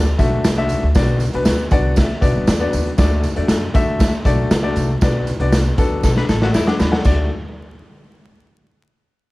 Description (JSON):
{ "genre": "uptempo 1960s-style soul", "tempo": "118 BPM", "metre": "4/4", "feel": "straight", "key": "D mixolydian", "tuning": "A4 = 440 Hz", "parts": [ { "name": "warm grand piano", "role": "accompaniment", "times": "0.0-7.3 s", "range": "A3 to D6", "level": "-21 LUFS", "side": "left 2 dB", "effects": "none" }, { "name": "upright bass", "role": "bass", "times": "0.0-7.3 s", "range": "G1 to F#2", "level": "-20 LUFS", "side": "equal", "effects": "none" }, { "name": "raw garage drum kit", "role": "drums", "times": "0.2-7.2 s", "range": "crash cymbal, hi-hat, kick drum, snare drum", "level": "-17 LUFS", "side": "equal", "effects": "none" }, { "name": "congas", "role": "percussion", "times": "0.2-7.3 s", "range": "none", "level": "-32 LUFS", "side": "right 2 dB", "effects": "none" }, { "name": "tambourine", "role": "percussion", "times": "0.2-7.3 s", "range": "none", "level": "-36 LUFS", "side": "right 10 dB", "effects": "none" }, { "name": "hollow-body jazz guitar", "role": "riff", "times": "6.0-7.0 s", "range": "F#3 to B4", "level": "-22 LUFS", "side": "left 4 dB", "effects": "none" } ], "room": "light reverb", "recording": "vinyl crackle", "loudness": "-14 LUFS", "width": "side -20 dB against mid", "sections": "0.0-7.1 A section; 7.1-9.1 B section", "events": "grand piano fill 1.5-3.0; drum fill 6.0-7.1", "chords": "0.0 D; 1.0 Bm; 3.0 D; 5.0 Bm; 7.1 D" }